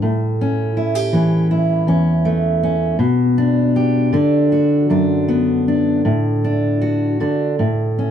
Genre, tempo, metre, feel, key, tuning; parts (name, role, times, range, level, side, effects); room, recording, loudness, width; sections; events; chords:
folk, solo fingerstyle acoustic guitar; 79 BPM; 4/4; rubato; A4 = 440 Hz
fingerpicked steel-string acoustic guitar; solo; 0.0-8.1 s; E2 to G4; -14 LUFS; equal
light reverb; dry, close 1970s-style studio recording, lossy compression artefacts; -14 LUFS; side -9 dB against mid
0.0-8.1 A section
0.0 A; 3.0 Bm; 6.1 D/A; 7.6 A